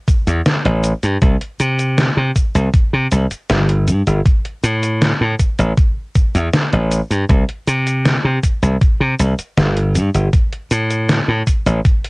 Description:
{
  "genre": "vaporwave",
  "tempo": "79 BPM",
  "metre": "4/4",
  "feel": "straight",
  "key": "C major",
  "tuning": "A4 = 441 Hz",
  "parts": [
    { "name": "detuned 8-bit digital drum machine", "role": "drums", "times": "0.1-12.1 s", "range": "cabasa, hi-hat, snare drum", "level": "-18 LUFS", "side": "equal", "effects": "cassette tape" },
    { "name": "electronic kick drum", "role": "drums", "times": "0.1-12.0 s", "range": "none", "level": "-14 LUFS", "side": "equal", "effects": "cassette tape" },
    { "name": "glassy slap bass", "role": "bass", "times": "0.3-11.8 s", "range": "G1 to C3", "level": "-15 LUFS", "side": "equal", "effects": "none" }
  ],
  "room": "little or no reverb",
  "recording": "home recording on cassette",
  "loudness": "-14 LUFS",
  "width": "side -28 dB against mid",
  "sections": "0.0-12.1 A section",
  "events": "none",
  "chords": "none"
}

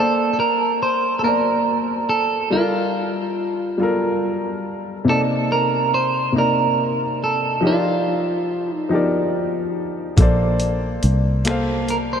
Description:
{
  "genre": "slow six-eight R&B",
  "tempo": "47 BPM (dotted quarters)",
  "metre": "6/8",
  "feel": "straight",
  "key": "Bb major",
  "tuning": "A4 = 440 Hz",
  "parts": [
    { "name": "clean electric guitar", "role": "melody", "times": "0.0-12.2 s", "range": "F4 to C5", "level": "-20 LUFS", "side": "right 3 dB", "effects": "analog delay" },
    { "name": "warm baby grand piano", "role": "accompaniment", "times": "0.0-12.2 s", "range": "C3 to A5", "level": "-21 LUFS", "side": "left 1 dB", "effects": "none" },
    { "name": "fingered electric bass", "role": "bass", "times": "10.2-12.2 s", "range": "Bb1 to C2", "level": "-19 LUFS", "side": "equal", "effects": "none" },
    { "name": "dusty soul sampler-style drum kit", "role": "drums", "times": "10.2-12.1 s", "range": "finger snaps, hi-hat, kick drum", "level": "-19 LUFS", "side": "equal", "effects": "none" }
  ],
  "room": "wet huge ambient reverb, RT60 3.8 s",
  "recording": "dreamy mix soaked in reverb",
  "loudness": "-17 LUFS",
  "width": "side -8 dB against mid",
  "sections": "0.0-12.2 A section",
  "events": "none",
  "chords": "0.0 Bbmaj9; 2.5 Gm9; 5.1 Cm9; 7.6 F13sus4; 10.2 Bbmaj9"
}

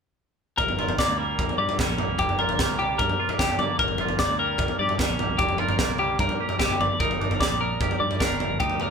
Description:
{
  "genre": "math rock and midwest emo",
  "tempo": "150 BPM",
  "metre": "4/4",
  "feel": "straight",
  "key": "G minor",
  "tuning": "A4 = 440 Hz",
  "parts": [
    { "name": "twangy electric guitar", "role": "accompaniment", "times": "0.6-8.9 s", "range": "G2 to G4", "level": "-30 LUFS", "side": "right 8 dB", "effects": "none" },
    { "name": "twelve-string electric guitar", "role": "arpeggios", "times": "0.6-8.9 s", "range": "G4 to D5", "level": "-25 LUFS", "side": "left 3 dB", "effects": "none" },
    { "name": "fingered electric bass", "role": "bass", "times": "0.6-8.9 s", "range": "F1 to G2", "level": "-33 LUFS", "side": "equal", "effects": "none" },
    { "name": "crisp fusion drum kit", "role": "drums", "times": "0.6-8.9 s", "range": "kick drum, snare drum, toms", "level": "-26 LUFS", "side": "equal", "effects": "none" }
  ],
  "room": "light reverb",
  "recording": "band playing live in one room",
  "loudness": "-22 LUFS",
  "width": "side -6 dB against mid",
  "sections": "0.6-8.9 A section",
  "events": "none",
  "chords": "0.6 Gm7; 6.8 Ebmaj7/G"
}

